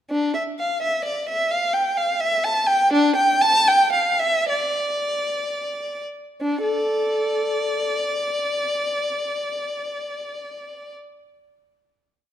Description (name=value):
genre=classical, baroque-style suite movement for unaccompanied violin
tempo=56-86 BPM (dotted quarters)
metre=6/8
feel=rubato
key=D minor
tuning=A4 = 440 Hz
part: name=rich violin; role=solo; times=0.1-10.9 s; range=D4 to A5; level=-20 LUFS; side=equal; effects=none
room=moderate recital hall reverb, RT60 1.7 s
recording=dark, warm production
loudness=-19 LUFS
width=side -10 dB against mid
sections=0.1-6.4 A section; 6.4-10.3 final chord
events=slowing down 2.2-6.4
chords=none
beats=| 0.10 0.83 | 1.53 2.23 | 2.93 3.68 | 4.50 5.41 | 6.42 7.40 | 8.39 9.36